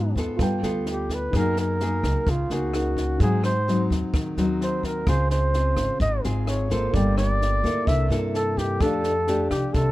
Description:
bossa nova; 128 BPM; 4/4; straight; A4 = 440 Hz
mellow flugelhorn; melody; 0.0-9.9 s; F4 to E5; -26 LUFS; equal
dark baby grand piano; accompaniment; 0.0-9.9 s; D4 to G5; -34 LUFS; right 2 dB
nylon-string guitar; accompaniment; 0.0-9.9 s; Ab2 to A4; -26 LUFS; left 2 dB
upright bass; bass; 0.0-9.9 s; G1 to Ab2; -26 LUFS; equal
compact cocktail drum kit; drums; 0.2-9.9 s; kick drum, rim click, snare drum; -28 LUFS; equal
little or no reverb; dark, warm production; -21 LUFS; side -16 dB against mid
0.0-9.9 A section
0.4 G9; 1.3 Gb69; 3.2 Ab7; 5.1 Dbmaj7; 6.9 Gm9; 7.9 C13; 8.8 F69

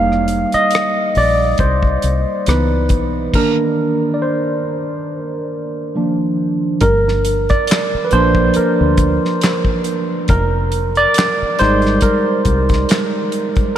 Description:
R&B, neo-soul; 69 BPM; 4/4; swing 55% on 16ths; A4 = 439 Hz
barky tine electric piano; accompaniment; 0.0-13.8 s; Eb3 to F5; -15 LUFS; right 1 dB; overdrive, lush chorus
deep dub fingered electric bass; bass; 0.0-12.8 s; F1 to D2; -18 LUFS; left 1 dB
damped 70s drum kit; drums; 0.1-13.8 s; crash cymbal, handclaps, hi-hat, kick drum, rim click, snare drum; -19 LUFS; equal
moderate cathedral reverb, RT60 6.8 s; dreamy mix soaked in reverb; -13 LUFS; side -10 dB against mid
0.0-6.8 A section; 6.8-13.8 B section
tine electric piano solo 0.0-6.8, 6.8-13.8; stop 3.3-6.8
0.0 F7sus4; 2.5 Dbm9; 3.3 Cm9; 5.9 Cm11; 6.8 Gm7; 10.3 Fm7

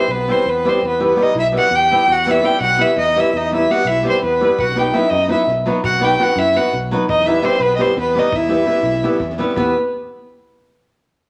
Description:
balkan folk, Balkan wedding band; 336 BPM (eighths); 7/8; straight; E harmonic minor; A4 = 439 Hz
clear violin; melody; 0.0-9.7 s; B4 to G5; -19 LUFS; equal
accordion; second line; 0.0-9.7 s; B3 to G4; -27 LUFS; equal
flamenco guitar; accompaniment; 0.0-9.7 s; F#3 to B4; -22 LUFS; equal
modern bright fingered electric bass; bass; 0.1-9.7 s; B1 to F#2; -29 LUFS; equal
compact cocktail drum kit; percussion; 4.6-9.7 s; kick drum, snare drum; -35 LUFS; equal
wet large studio reverb, RT60 1.1 s; -16 LUFS; mono
0.0-9.6 A section; 9.6-10.8 B section
0.0 Em; 4.6 B; 7.1 Em

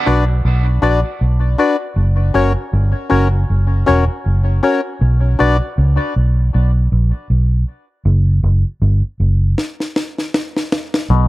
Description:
dub reggae; 79 BPM; 4/4; swing 58% on 16ths; B harmonic minor; A4 = 440 Hz
percussive organ stab; stabs; 0.1-5.6 s; C#4 to D5; -18 LUFS; left 3 dB; chorus, tape echo
vintage muted fingered electric bass; bass; 0.1-11.3 s; E1 to C#2; -13 LUFS; equal
snare drum; drums; 9.6-11.1 s; -19 LUFS; left 1 dB
clav; arpeggios; 11.1-11.3 s; B2; -20 LUFS; left 10 dB
light reverb, studio reverb; -13 LUFS; side -18 dB against mid
0.0-11.1 A section
break 9.6-11.1; drum fill 9.6-11.1; part muted 11.1
0.0 Bm; 2.0 F#; 5.0 Bm; 8.1 N.C.

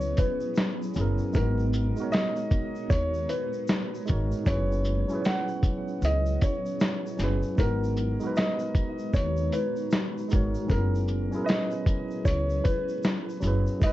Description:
lo-fi hip hop; 77 BPM; 4/4; swing 63% on 16ths; A4 = 445 Hz
dark upright piano; melody; 0.0-13.9 s; A#4 to F#5; -32 LUFS; left 1 dB; low-pass filter, tape echo
tine electric piano; accompaniment; 0.0-13.9 s; F#3 to C#5; -32 LUFS; right 1 dB; medium stereo tremolo, cassette tape, low-pass filter
granular cloud pad; sustained chords; 0.0-13.9 s; F#3 to A#5; -37 LUFS; left 1 dB; built-in reverb, low-pass filter
upright bass; bass; 0.0-13.6 s; F#1 to D#2; -28 LUFS; equal
tube shaker; percussion; 0.0-13.9 s; -55 LUFS; left 4 dB
lo-fi sampler-style drum kit; drums; 0.2-13.9 s; hi-hat, kick drum, shaker, snare drum; -26 LUFS; equal
moderate studio reverb, RT60 0.6 s; dark, warm production, vinyl crackle, nothing above 7.8 kHz; -24 LUFS; side -15 dB against mid
0.0-13.9 A section
0.0 F#9sus4; 1.3 G#m9; 4.5 F#9sus4; 7.6 G#m9; 10.7 F#9sus4

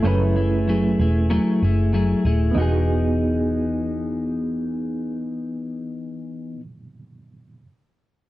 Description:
indie pop; 95 BPM; 4/4; straight; E major; A4 = 440 Hz
clean electric guitar; accompaniment; 0.0-6.6 s; E3 to G#4; -23 LUFS; left 1 dB; wide subtle chorus, vibrato effect
reed electric piano; accompaniment; 0.0-7.6 s; A3 to B4; -27 LUFS; right 3 dB; fast tremolo
vintage muted picked electric bass; bass; 0.0-6.6 s; D#1 to F#1; -22 LUFS; equal
wet small room ambience, RT60 0.5 s; dark, warm production; -19 LUFS; side -16 dB against mid
0.0-2.6 A section; 2.6-5.1 B section
0.0 F#m9; 2.6 Emaj7

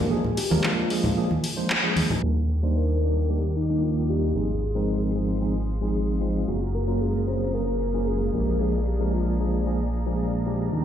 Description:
nu-disco, nu disco; 113 BPM; 4/4; straight; Eb major; A4 = 439 Hz
soft octave-layered synth lead; melody; 0.0-9.9 s; Eb4 to C5; -30 LUFS; left 2 dB; chorus, tape echo
bright tine electric piano; accompaniment; 0.0-10.8 s; F3 to C5; -27 LUFS; right 1 dB; medium stereo tremolo, low-pass filter, tape echo
congas and bongos; percussion; 0.2-2.2 s; -26 LUFS; equal
house drum kit; drums; 0.4-2.1 s; handclaps, hi-hat; -27 LUFS; left 1 dB; studio reverb
clear symphonic string section; sustained chords; 2.2-10.8 s; G4 to Eb6; -40 LUFS; left 2 dB; low-pass filter
fat analog bass; bass; 2.2-10.8 s; Gb1 to Eb2; -25 LUFS; equal
moderate plate reverb, RT60 1.8 s, digital ambience; played on a big sound system in a bare room, large studio reverb, low-pass filter; -22 LUFS; side -9 dB against mid
0.0-2.2 A section; 2.2-10.8 B section
band accent 1.7; filter sweep 2.2-10.8
0.0 Bb7; 2.2 Ebmaj7; 4.4 Ab6; 6.5 Gbmaj9; 8.3 Bb7

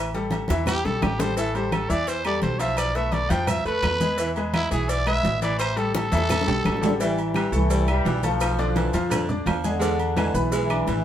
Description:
latin, salsa; 170 BPM; 4/4; straight; A minor; A4 = 440 Hz
bright grand piano; accompaniment; 0.0-11.0 s; D3 to E6; -28 LUFS; left 2 dB
upright bass; bass; 0.0-11.0 s; A1 to F2; -27 LUFS; equal
congas; percussion; 0.1-11.0 s; -30 LUFS; equal
cowbell and bongos; percussion; 0.1-11.0 s; -32 LUFS; left 3 dB
maracas; percussion; 0.1-11.0 s; -40 LUFS; right 5 dB
agogo bells and timbales; percussion; 0.3-11.0 s; -32 LUFS; right 3 dB
growling trumpet; melody; 0.7-7.0 s; E4 to G5; -26 LUFS; right 1 dB
claves; percussion; 0.7-10.9 s; -36 LUFS; left 2 dB
mellow trombone section; melody; 6.8-11.0 s; G2 to F4; -26 LUFS; left 1 dB
raspy baritone saxophone; second line; 7.0-11.0 s; D3 to G#3; -29 LUFS; right 2 dB; tape echo
wet studio ambience, RT60 0.5 s; heard from further back in the room; -21 LUFS; side -10 dB against mid
0.0-7.0 A section; 7.0-11.0 B section
trumpet solo 0.0-7.0; drum fill 0.5-1.4, 5.9-7.0
0.0 A5; 2.8 G13 (rootless); 4.2 E; 5.6 A5; 7.0 Am7; 8.4 Bm7b5; 9.8 E7

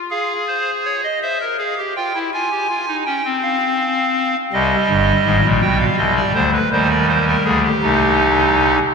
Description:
classical, baroque-style 3-part fugue for pipe organ; 54 BPM (dotted quarters); 6/8; straight; F minor; A4 = 440 Hz
pipe organ, clarinet reed; solo; 0.1-8.8 s; G1 to Ab5; -15 LUFS; equal
wet cathedral reverb, RT60 5.6 s; minimal, uncompressed stereo recording; -15 LUFS; side -5 dB against mid
0.1-8.9 A section
0.1 Fm/Ab; 1.2 C7; 2.3 Fm; 3.4 F5/C; 4.5 Cm; 5.6 G7/B; 6.7 Cm/Eb; 7.8 Cm

